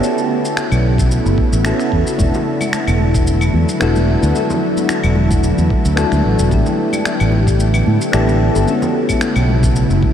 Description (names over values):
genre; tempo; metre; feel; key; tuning
sunset chillout; 111 BPM; 4/4; swing 54% on 16ths; unclear; A4 = 435 Hz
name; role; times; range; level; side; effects
soft electric-piano-like synth keys; accompaniment; 0.0-10.1 s; B3 to A4; -19 LUFS; left 2 dB; chorus, phaser, auto-pan, low-pass filter, ping-pong delay
ethereal airy pad; sustained chords; 0.0-10.1 s; C#3 to G4; -20 LUFS; equal; ensemble chorus, built-in reverb
electronic shaker, finger snaps and claves; drums; 0.0-10.0 s; none; -24 LUFS; equal; none
fingered electric bass; bass; 0.7-10.0 s; E1 to A2; -15 LUFS; equal; none
electronic kick drum; drums; 1.0-10.1 s; none; -18 LUFS; equal; none
congas; percussion; 2.2-10.1 s; none; -27 LUFS; left 2 dB; none
room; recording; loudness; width
moderate huge ambient reverb, RT60 7.1 s; dreamy mix soaked in reverb; -13 LUFS; side -9 dB against mid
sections
0.0-10.1 A section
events
none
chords
0.0 B9sus4; 2.2 E9sus4; 6.5 A9sus4; 8.7 B9sus4